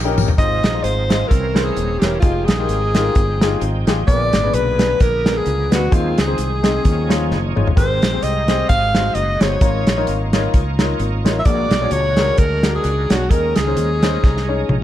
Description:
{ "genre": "uptempo gospel", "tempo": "130 BPM", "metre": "4/4", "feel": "swing 56% on 8ths", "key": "Ab major", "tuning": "A4 = 440 Hz", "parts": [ { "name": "warm baby grand piano", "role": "accompaniment", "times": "0.0-14.7 s", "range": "Ab2 to Eb5", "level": "-23 LUFS", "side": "left 5 dB", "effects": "none" }, { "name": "bright tonewheel organ", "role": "sustained chords", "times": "0.0-14.8 s", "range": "D3 to G5", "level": "-28 LUFS", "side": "right 5 dB", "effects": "slow rotary speaker, overdrive, chorus vibrato" }, { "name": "fingered electric bass", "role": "bass", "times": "0.0-14.8 s", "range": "Eb1 to Eb2", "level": "-21 LUFS", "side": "equal", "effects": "none" }, { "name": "warm soul drum kit", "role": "drums", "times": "0.2-14.8 s", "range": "hi-hat, kick drum, snare drum, toms", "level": "-17 LUFS", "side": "equal", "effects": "none" }, { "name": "clear alto saxophone", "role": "melody", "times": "0.4-14.8 s", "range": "F4 to F5", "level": "-20 LUFS", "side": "equal", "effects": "none" } ], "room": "light reverb", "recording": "dark, warm production", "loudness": "-14 LUFS", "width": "side -12 dB against mid", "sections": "0.4-14.8 A section", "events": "drum fill 0.0-0.4, 7.3-7.8, 14.2-14.8", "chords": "0.4 Ab6; 1.3 C7b9; 2.2 Fm9; 4.1 Bb7b9; 5.9 Ab; 6.8 Eb9sus4; 7.8 Abmaj9; 8.7 Ab7; 9.6 Db69/Ab; 11.5 Bb7alt; 13.3 Eb7sus4", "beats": "| 0.38 0.84 1.30 1.77 | 2.23 2.69 3.15 3.61 | 4.08 4.54 5.00 5.46 | 5.92 6.38 6.85 7.31 | 7.77 8.23 8.69 9.15 | 9.62 10.08 10.54 11.00 | 11.46 11.92 12.39 12.85 | 13.31 13.77 14.23 14.69" }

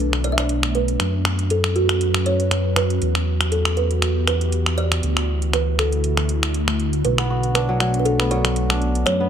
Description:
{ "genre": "afro house", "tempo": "119 BPM", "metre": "4/4", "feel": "swing 55% on 16ths", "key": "B minor", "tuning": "A4 = 438 Hz", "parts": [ { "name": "kalimba", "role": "melody", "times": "0.0-9.3 s", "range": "F#4 to E5", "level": "-25 LUFS", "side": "right 3 dB", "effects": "tape echo" }, { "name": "ethereal airy pad", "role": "sustained chords", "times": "0.0-9.3 s", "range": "D3 to B4", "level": "-26 LUFS", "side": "equal", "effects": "ensemble chorus, built-in reverb" }, { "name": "kora", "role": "arpeggios", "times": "0.0-0.3, 7.2-9.3 s", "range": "F#3 to F#4", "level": "-25 LUFS", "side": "left 1 dB", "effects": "tape echo" }, { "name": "smooth synth bass", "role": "bass", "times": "0.0-9.3 s", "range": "B1 to F#2", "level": "-21 LUFS", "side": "equal", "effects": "none" }, { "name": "house drum kit", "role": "drums", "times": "0.1-9.2 s", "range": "finger snaps, hi-hat", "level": "-24 LUFS", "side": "equal", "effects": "none" } ], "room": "light reverb, small room ambience", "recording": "none", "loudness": "-18 LUFS", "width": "side -9 dB against mid", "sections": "0.0-9.3 A section", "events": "none", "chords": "0.0 Bm7; 1.0 F#sus4; 3.0 Em; 5.0 Dadd9; 7.0 Bm7", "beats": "0.49 | 1.00 1.50 2.01 2.51 | 3.02 3.52 4.02 4.53 | 5.03 5.54 6.04 6.54 | 7.05 7.55 8.06 8.56 | 9.07" }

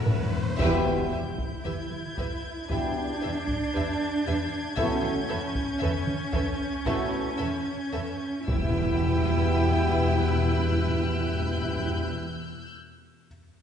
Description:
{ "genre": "cinematic, suspense film score", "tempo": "57 BPM", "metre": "4/4", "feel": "straight", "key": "E dorian", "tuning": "A4 = 444 Hz", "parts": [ { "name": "warm chamber violin section", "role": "melody", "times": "0.0-12.0 s", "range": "E5 to G5", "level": "-38 LUFS", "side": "left 1 dB", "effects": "none" }, { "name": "warm chamber violin section", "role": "second line", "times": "0.0-12.0 s", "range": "B4 to C#5", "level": "-38 LUFS", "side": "right 1 dB", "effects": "none" }, { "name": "dark symphonic viola section", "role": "accompaniment", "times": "0.0-12.1 s", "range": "E4 to A4", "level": "-37 LUFS", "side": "right 1 dB", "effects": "none" }, { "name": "warm French horn section", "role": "sustained chords", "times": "0.0-12.0 s", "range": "B3 to E4", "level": "-33 LUFS", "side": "left 2 dB", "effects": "none" }, { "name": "warm trombone section", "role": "sustained chords", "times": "0.0-12.1 s", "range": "B2 to A3", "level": "-34 LUFS", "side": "right 1 dB", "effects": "none" }, { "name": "dark symphonic double bass section", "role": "bass", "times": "0.0-12.0 s", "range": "E2", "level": "-31 LUFS", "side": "right 1 dB", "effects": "none" }, { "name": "warm studio cello section", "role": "bass", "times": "0.0-12.0 s", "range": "C#4 to E4", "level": "-32 LUFS", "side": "right 2 dB", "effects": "none" }, { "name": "timpani", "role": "percussion", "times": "0.0-12.1 s", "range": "E2", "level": "-32 LUFS", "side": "left 2 dB", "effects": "none" }, { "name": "riser and impact", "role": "sound effects", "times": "0.0-12.1 s", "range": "none", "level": "-35 LUFS", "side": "equal", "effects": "none" }, { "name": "felt-muted upright piano", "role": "texture", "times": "0.0-4.8 s", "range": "E5 to F#5", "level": "-44 LUFS", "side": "equal", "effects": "none" }, { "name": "taiko ensemble", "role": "drums", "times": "0.1-10.6 s", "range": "none", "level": "-32 LUFS", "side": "equal", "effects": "none" }, { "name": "warm symphonic violin section", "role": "texture", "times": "0.6-12.7 s", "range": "E6 to G#6", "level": "-38 LUFS", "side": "left 3 dB", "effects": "none" } ], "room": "wet scoring stage reverb, RT60 1.5 s", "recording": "heard from further back in the room, nothing above 10.7 kHz", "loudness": "-24 LUFS", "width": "side -8 dB against mid", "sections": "0.6-9.0 A section; 9.0-13.3 B section", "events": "timpani fill 0.0-0.6; drum fill 0.0-0.6; riser 0.0-0.6; band accent 0.6-1.6; impact 0.6-4.8, 9.0-13.3", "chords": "0.0 Aadd9/E; 0.6 Em; 4.8 Aadd9/E; 8.5 Em", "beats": "| 0.60 1.65 2.71 3.75 | 4.78 5.82 6.87 7.94 | 9.03 10.09 11.14 12.20" }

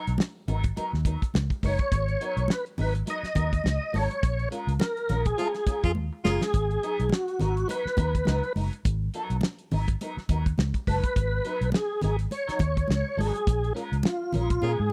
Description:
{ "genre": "funk", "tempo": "104 BPM", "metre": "4/4", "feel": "swing 56% on 16ths", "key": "G# dorian", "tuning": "A4 = 440 Hz", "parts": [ { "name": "clean electric guitar", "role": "accompaniment", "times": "0.0-14.9 s", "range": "F#3 to A#4", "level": "-38 LUFS", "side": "equal", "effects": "wah, subtle chorus" }, { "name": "vintage muted fingered electric bass", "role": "bass", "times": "0.1-14.9 s", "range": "F#1 to A#2", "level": "-30 LUFS", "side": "equal", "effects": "none" }, { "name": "cloth-damped thuddy drum kit", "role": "drums", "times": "0.1-14.6 s", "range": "hi-hat, kick drum, snare drum", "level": "-29 LUFS", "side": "equal", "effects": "none" }, { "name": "congas", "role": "percussion", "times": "0.2-14.9 s", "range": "none", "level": "-36 LUFS", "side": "equal", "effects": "none" }, { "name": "tonewheel organ", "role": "melody", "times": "1.7-14.9 s", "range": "E#4 to D#5", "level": "-32 LUFS", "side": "equal", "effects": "overdrive, chorus vibrato, slow rotary speaker" }, { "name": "breathy baritone saxophone", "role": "second line", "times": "5.4-6.4, 14.6-14.7 s", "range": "E#4", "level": "-34 LUFS", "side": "equal", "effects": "none" } ], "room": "studio reverb", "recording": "dry, close 1970s-style studio recording", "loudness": "-27 LUFS", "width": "mono", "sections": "0.0-14.9 A section", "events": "band accent 4.2-6.5, 13.5-14.9; drum fill 6.0-6.5, 14.6-14.9", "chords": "0.0 G#m9; 4.2 A#m7; 6.5 G#m9; 13.5 A#m7", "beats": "0.19 0.77 1.35 | 1.92 2.50 3.08 3.65 | 4.23 4.81 5.38 5.96 | 6.54 7.12 7.69 8.27 | 8.85 9.43 10.00 10.58 | 11.16 11.74 12.31 12.89 | 13.47 14.05 14.62" }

